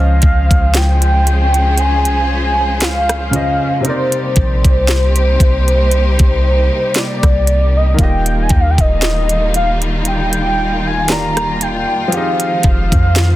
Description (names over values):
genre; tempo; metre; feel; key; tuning
contemporary R&B; 58 BPM; 4/4; swing 54% on 16ths; C minor; A4 = 440 Hz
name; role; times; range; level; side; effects
warm velvety synth lead; melody; 0.0-13.4 s; C5 to Bb5; -17 LUFS; equal; chorus, digital delay
clear grand piano; accompaniment; 0.0-13.4 s; C3 to Eb5; -23 LUFS; equal; none
warm studio string section; sustained chords; 0.0-13.4 s; C3 to C5; -22 LUFS; left 1 dB; none
soft 808-style bass; bass; 0.0-13.4 s; Eb1 to F2; -14 LUFS; equal; none
trap drum kit; drums; 0.2-13.4 s; hi-hat, kick drum, rim click, snare drum; -14 LUFS; equal; none
room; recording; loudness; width
digital ambience; dense, heavily limited modern master; -11 LUFS; side -15 dB against mid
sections
0.0-13.4 A section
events
none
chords
0.0 Dbmaj7; 3.8 Cm7; 8.0 Ebmaj9; 12.1 Fm7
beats
0.74 1.78 2.81 | 3.85 4.88 5.92 6.95 | 7.99 9.02 10.05 11.09 | 12.12 13.16